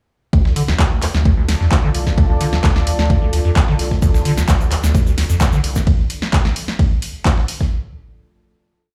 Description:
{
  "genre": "acid house",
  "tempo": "130 BPM",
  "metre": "4/4",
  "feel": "straight",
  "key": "D minor",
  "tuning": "A4 = 439 Hz",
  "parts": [
    { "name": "deep acid bass", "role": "riff", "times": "0.3-5.8 s", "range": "C2 to D3", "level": "-20 LUFS", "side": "equal", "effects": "overdrive, lush chorus" },
    { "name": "dusty soul sampler-style drum kit", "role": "drums", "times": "0.3-7.7 s", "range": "hi-hat, ride cymbal, snare drum", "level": "-37 LUFS", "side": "equal", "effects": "sidechain pumping on cymbals, high-pass filter on cymbals, high-pass filter on snare, sidechain pumping on hats, high-pass filter on hats" },
    { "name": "electronic kick drum", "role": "drums", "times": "0.3-7.7 s", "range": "none", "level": "-18 LUFS", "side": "equal", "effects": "none" },
    { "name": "deep dark ambient pad", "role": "texture", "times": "1.1-5.9 s", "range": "F4 to A5", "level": "-30 LUFS", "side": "equal", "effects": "chorus, built-in reverb, sidechain pumping" },
    { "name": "punchy analog drum machine", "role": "drums", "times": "0.6-7.6 s", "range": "handclaps, hi-hat, snare drum", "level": "-25 LUFS", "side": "equal", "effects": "none" },
    { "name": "tube shaker", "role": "percussion", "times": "4.0-5.8 s", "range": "none", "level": "-36 LUFS", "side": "equal", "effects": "none" }
  ],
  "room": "digital ambience",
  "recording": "played on a big sound system in a bare room, large studio reverb",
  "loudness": "-16 LUFS",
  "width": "mono",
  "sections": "0.3-7.7 drop",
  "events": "drop 0.3-7.7",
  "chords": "0.3 Dm"
}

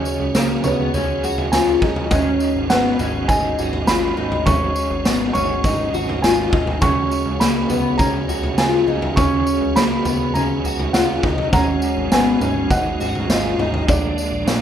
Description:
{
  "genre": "dream pop",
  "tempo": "102 BPM",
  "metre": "4/4",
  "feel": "straight",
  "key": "unclear",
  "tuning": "A4 = 440 Hz",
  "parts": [
    { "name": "felt-muted upright piano", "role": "melody", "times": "0.0-14.6 s", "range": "Db5 to Db6", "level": "-24 LUFS", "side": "right 2 dB", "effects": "tape echo" },
    { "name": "raw garage guitar", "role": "accompaniment", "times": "0.0-14.6 s", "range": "Ab2 to Bb4", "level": "-31 LUFS", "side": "right 6 dB", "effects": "overdrive, tremolo, analog chorus" },
    { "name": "tonewheel organ", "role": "sustained chords", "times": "0.0-14.6 s", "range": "Db3 to Ab4", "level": "-26 LUFS", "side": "right 5 dB", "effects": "chorus vibrato, stopped rotary speaker" },
    { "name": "fingerpicked twelve-string acoustic guitar", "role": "arpeggios", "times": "0.0-14.6 s", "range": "Bb3 to Gb4", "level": "-21 LUFS", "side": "left 3 dB", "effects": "wide subtle chorus, tape echo" },
    { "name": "fat analog bass", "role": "bass", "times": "0.0-14.6 s", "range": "Ab1 to Db2", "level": "-27 LUFS", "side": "equal", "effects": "none" },
    { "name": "soft synth bell", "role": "texture", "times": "0.0-14.6 s", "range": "F5 to F6", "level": "-35 LUFS", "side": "right 1 dB", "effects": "none" },
    { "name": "raw garage drum kit", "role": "drums", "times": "0.1-14.6 s", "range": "kick drum, snare drum, tambourine, toms", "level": "-21 LUFS", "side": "equal", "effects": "none" }
  ],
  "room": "light reverb",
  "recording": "rough home demo mix",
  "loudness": "-16 LUFS",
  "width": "side -9 dB against mid",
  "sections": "0.0-14.6 A section",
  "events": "none",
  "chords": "0.0 Dbsus4; 2.1 Ab7sus4; 6.8 Dbsus4; 11.5 Ab7sus4; 13.9 Bb7"
}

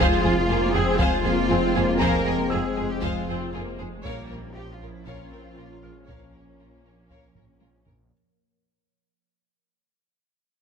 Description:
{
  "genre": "cinematic, hybrid orchestral and electronic film score",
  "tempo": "118 BPM",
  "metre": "4/4",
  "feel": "straight",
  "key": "unclear",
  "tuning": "A4 = 440 Hz",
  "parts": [
    { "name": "dark symphonic violin section", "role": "melody", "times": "0.0-8.0 s", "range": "Ab4 to F5", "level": "-34 LUFS", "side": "left 3 dB", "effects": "none" },
    { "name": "rich studio violin section", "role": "second line", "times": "0.0-7.9 s", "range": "F4 to Db5", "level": "-30 LUFS", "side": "equal", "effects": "none" },
    { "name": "clear symphonic viola section", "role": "accompaniment", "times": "0.0-7.9 s", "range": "F3 to Db4", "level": "-30 LUFS", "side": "left 2 dB", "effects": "none" },
    { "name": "dark French horn section", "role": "sustained chords", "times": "0.0-7.8 s", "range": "F3 to Db4", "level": "-31 LUFS", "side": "left 6 dB", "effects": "none" },
    { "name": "warbly tape-like pad", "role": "sustained chords", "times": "0.2-8.1 s", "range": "F3 to Db5", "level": "-33 LUFS", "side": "right 2 dB", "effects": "chorus, built-in reverb" },
    { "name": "rich symphonic cello section", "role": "bass", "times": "0.0-7.8 s", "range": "Bb3 to Bb4", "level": "-27 LUFS", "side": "right 1 dB", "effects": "none" },
    { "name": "rich symphonic double bass section", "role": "bass", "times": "0.0-7.9 s", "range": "Bb1 to F2", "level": "-30 LUFS", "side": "right 3 dB", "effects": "none" },
    { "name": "wide detuned saw bass", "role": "bass", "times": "0.0-8.1 s", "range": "F1 to Bb1", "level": "-32 LUFS", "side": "equal", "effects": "chorus" },
    { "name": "clear concert grand piano", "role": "texture", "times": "0.0-8.1 s", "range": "G4 to Ab6", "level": "-38 LUFS", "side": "left 1 dB", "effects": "none" },
    { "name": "taiko ensemble", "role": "drums", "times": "1.0-8.1 s", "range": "none", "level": "-28 LUFS", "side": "equal", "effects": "none" }
  ],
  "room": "moderate scoring stage reverb, RT60 1.6 s",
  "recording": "close, detailed microphones",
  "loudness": "-20 LUFS",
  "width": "side -6 dB against mid",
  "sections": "0.0-8.1 A section",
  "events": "fade-out 0.0-8.1; drum fill 7.3-8.1",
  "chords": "0.0 Fm; 4.0 Bbm"
}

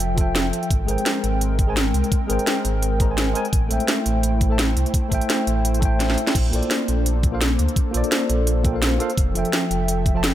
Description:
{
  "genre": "liquid drum and bass",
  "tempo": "170 BPM",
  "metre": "4/4",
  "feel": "swing 54% on 16ths",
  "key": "Bb lydian",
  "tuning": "A4 = 441 Hz",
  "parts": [
    { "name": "tine electric piano", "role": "accompaniment", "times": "0.0-10.2 s", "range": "F3 to Bb5", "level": "-25 LUFS", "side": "left 1 dB", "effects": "fast stereo tremolo, dub echo" },
    { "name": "airy breathy pad", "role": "sustained chords", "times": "0.0-10.3 s", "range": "F3 to G5", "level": "-27 LUFS", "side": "equal", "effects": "chorus, sidechain pumping" },
    { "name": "sub bass with octave", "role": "bass", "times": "0.0-10.3 s", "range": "F1 to D2", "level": "-22 LUFS", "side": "equal", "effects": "none" },
    { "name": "drum and bass drum kit", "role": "drums", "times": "0.0-10.3 s", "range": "crash cymbal, hi-hat, snare drum", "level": "-23 LUFS", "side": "equal", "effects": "none" },
    { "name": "electronic kick drum", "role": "drums", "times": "0.2-10.1 s", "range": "none", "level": "-20 LUFS", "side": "equal", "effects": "none" }
  ],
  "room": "light reverb",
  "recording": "none",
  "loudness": "-18 LUFS",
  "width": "side -12 dB against mid",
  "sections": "0.0-10.3 A section",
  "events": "drum fill 6.0-6.4",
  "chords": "0.0 Fmaj9; 0.7 Abmaj9; 3.5 Am7; 6.4 Bbmaj9; 9.2 Fmaj9"
}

